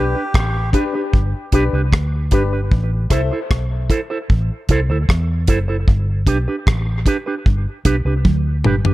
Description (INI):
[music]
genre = dub reggae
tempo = 76 BPM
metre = 4/4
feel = straight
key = unclear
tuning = A4 = 443 Hz
[part]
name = melodica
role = melody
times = 0.0-0.7 s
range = G4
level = -28 LUFS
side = right 1 dB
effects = dub echo
[part]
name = electric guitar with an envelope filter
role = accompaniment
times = 0.0-8.9 s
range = D4 to C5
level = -23 LUFS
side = right 4 dB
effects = vibrato effect, dub echo
[part]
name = warm upright piano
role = stabs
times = 0.0-3.3 s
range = D4 to C5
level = -25 LUFS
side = left 7 dB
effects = dub echo
[part]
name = vintage muted fingered electric bass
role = bass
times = 0.0-8.9 s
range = F#1 to E2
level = -18 LUFS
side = equal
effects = none
[part]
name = deep reggae drum kit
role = drums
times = 0.3-8.9 s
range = hi-hat, kick drum, rim click, toms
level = -16 LUFS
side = equal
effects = none
[sound]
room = small room ambience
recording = none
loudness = -15 LUFS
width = side -17 dB against mid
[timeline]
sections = 0.0-8.9 A section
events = drum fill 8.2-8.9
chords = 0.0 G; 2.7 Am; 5.9 G